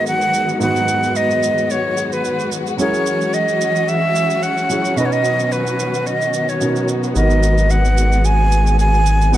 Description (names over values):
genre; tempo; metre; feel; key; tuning
amapiano; 110 BPM; 4/4; swing 55% on 16ths; G# minor; A4 = 442 Hz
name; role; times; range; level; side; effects
breathy bright jazz flute; melody; 0.0-9.4 s; B4 to G#5; -18 LUFS; right 1 dB; ping-pong delay
warm baby grand piano; accompaniment; 0.0-9.4 s; G#2 to C#5; -23 LUFS; right 2 dB; none
warm symphonic string section; sustained chords; 0.0-9.4 s; D#3 to G#4; -22 LUFS; left 2 dB; none
shaker; drums; 0.1-9.4 s; none; -30 LUFS; right 9 dB; none
saturated sub bass; bass; 7.2-9.4 s; G#1; -14 LUFS; equal; none
room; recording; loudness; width
light reverb, small room ambience; dark, warm production; -14 LUFS; side -13 dB against mid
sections
0.0-9.4 A section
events
none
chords
0.0 G#m7; 2.8 F#9; 5.0 Bmaj9; 7.2 G#m9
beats
0.06 | 0.61 1.16 1.70 2.25 | 2.79 3.34 3.88 4.43 | 4.97 5.52 6.06 6.61 | 7.16 7.70 8.25 8.79 | 9.34